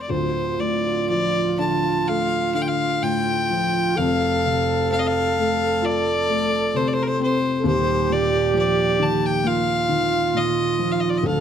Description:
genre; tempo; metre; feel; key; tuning
celtic folk, Celtic slow air; 60-68 BPM; 4/4; rubato; unclear; A4 = 440 Hz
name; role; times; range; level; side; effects
clear fiddle; melody; 0.0-11.4 s; Bb4 to A5; -23 LUFS; left 2 dB; none
felt-muted upright piano; accompaniment; 0.0-11.4 s; D1 to F4; -23 LUFS; left 3 dB; none
mellow baroque flute; second line; 0.1-11.4 s; F4 to A4; -24 LUFS; right 6 dB; none
room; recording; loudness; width
moderate recital hall reverb, RT60 1.4 s; close, detailed microphones; -18 LUFS; side -8 dB against mid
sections
0.1-11.4 A section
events
none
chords
0.1 Dm; 4.0 F; 7.6 Ebsus2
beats
| 0.08 1.08 2.06 3.01 | 3.96 4.91 5.83 6.74 | 7.65 8.55 9.44 10.33 | 11.23

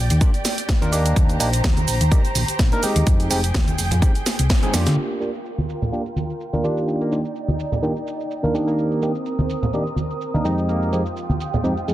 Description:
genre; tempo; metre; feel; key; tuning
filtered disco house; 126 BPM; 4/4; swing 55% on 16ths; unclear; A4 = 440 Hz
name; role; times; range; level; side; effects
muted symphonic violin section; sustained chords; 0.0-11.9 s; C4 to Eb6; -29 LUFS; right 2 dB; vintage 12-bit sampler grit, sidechain pumping, low-pass filter
hollow-body short-scale fingered electric bass; bass; 0.0-5.0 s; F1 to D3; -20 LUFS; equal; sidechain pumping, low-pass filter
house drum kit; drums; 0.1-11.9 s; hi-hat, shaker, snare drum; -26 LUFS; right 2 dB; low-pass filter on hats, low-pass filter on perc, low-pass filter on snare, low-pass filter on room
maracas and congas; percussion; 0.1-11.9 s; none; -25 LUFS; right 1 dB; sidechain pumping on perc, low-pass filter on perc
barky tine electric piano; accompaniment; 0.2-11.9 s; F2 to Bb4; -24 LUFS; equal; phaser, sidechain pumping, low-pass filter
electronic kick drum; drums; 0.2-4.6 s; none; -18 LUFS; equal; none
bright horn section; melody; 6.6-11.1 s; Bb3 to Eb4; -31 LUFS; right 2 dB; sidechain pumping, low-pass filter, dub echo
room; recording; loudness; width
light reverb, digital ambience; dense, heavily limited modern master; -18 LUFS; side -14 dB against mid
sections
0.0-5.0 A section; 5.0-11.9 B section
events
band accent 4.5; drum fill 4.7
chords
0.0 Ebmaj7; 0.9 Cm7; 3.1 Fm9; 5.0 Ebmaj7; 8.5 Cm7/Eb; 10.7 Fm9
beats
0.21 0.69 | 1.16 1.64 2.12 2.59 | 3.07 3.54 4.02 4.50 | 4.97 5.45 5.93 6.40 | 6.88 7.36 7.83 8.31 | 8.78 9.26 9.74 10.21 | 10.69 11.16 11.64

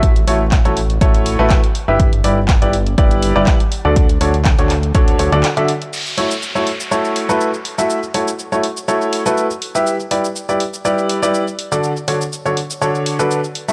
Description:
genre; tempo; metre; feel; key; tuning
piano house; 122 BPM; 4/4; swing 54% on 16ths; A mixolydian; A4 = 440 Hz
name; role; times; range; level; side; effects
clear upright piano; riff; 0.0-13.7 s; D3 to E5; -19 LUFS; equal; sidechain pumping
fat analog bass; bass; 0.0-5.4 s; G1 to D2; -20 LUFS; equal; sidechain pumping
electronic kick drum; drums; 0.0-5.1 s; none; -16 LUFS; equal; none
punchy analog drum machine; drums; 0.0-13.7 s; cabasa, crash cymbal, handclaps, hi-hat; -27 LUFS; equal; none
downlifter; sound effects; 5.9-9.9 s; none; -29 LUFS; equal; none
room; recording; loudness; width
light reverb; dry, gritty hardware recording; -16 LUFS; mono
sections
0.0-5.9 A section; 5.9-13.7 B section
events
break 5.4-5.9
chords
0.0 A6; 2.0 G6; 3.7 Dmaj7; 5.9 A6; 9.9 G6; 11.6 Dmaj7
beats
| 0.03 0.52 1.01 1.50 | 2.00 2.49 2.98 3.47 | 3.96 4.46 4.95 5.44 | 5.93 6.42 6.91 7.41 | 7.90 8.39 8.88 9.37 | 9.87 10.36 10.85 11.34 | 11.83 12.32 12.81 13.31

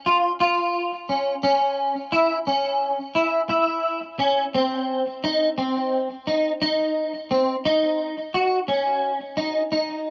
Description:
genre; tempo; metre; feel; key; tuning
progressive instrumental, progressive; 174 BPM (eighths); 9/8; straight; unclear; A4 = 440 Hz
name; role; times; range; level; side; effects
clean electric guitar; solo; 0.1-10.1 s; C4 to Gb4; -23 LUFS; equal; ensemble chorus, tape echo
room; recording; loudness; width
moderate studio reverb, RT60 0.5 s; dark, warm production, nothing above 7.7 kHz; -23 LUFS; mono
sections
0.0-10.1 A section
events
none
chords
none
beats
0.06 0.40 0.75 1.09 | 1.44 1.78 2.13 2.47 2.82 3.16 3.50 3.85 4.20 | 4.54 4.88 5.23 5.57 5.92 6.26 6.61 6.95 7.30 | 7.64 7.99 8.33 8.68 9.02 9.37 9.71 10.05

